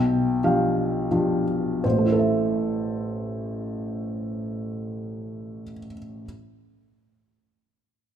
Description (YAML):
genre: classical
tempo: 82 BPM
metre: 3/4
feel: rubato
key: A minor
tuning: A4 = 443 Hz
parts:
  - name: felt-muted upright piano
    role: accompaniment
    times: 0.0-6.3 s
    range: A1 to G5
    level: -23 LUFS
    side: equal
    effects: none
room: moderate scoring stage reverb, RT60 2.0 s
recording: minimal, uncompressed stereo recording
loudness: -22 LUFS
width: side -9 dB against mid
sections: 0.0-1.8 A section; 1.8-6.2 B section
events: slowing down 0.0-1.8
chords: 0.0 G7/B; 1.8 Am